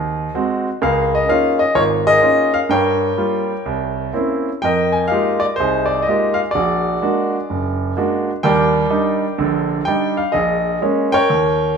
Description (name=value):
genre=solo jazz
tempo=126 BPM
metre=4/4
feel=swing 66% on 8ths, rubato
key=unclear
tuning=A4 = 440 Hz
part: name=clear grand piano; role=solo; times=0.0-11.8 s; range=F#1 to Ab5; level=-15 LUFS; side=equal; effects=none
room=wet large studio reverb, RT60 1.2 s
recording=minimal, uncompressed stereo recording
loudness=-15 LUFS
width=side -6 dB against mid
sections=0.0-11.8 A section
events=none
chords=0.0 Ab7; 0.8 Db69; 2.7 Gm7b5; 3.7 C7b9; 4.6 Fm11; 6.6 Bbaug7; 8.4 Ebmaj7; 10.3 Bbm7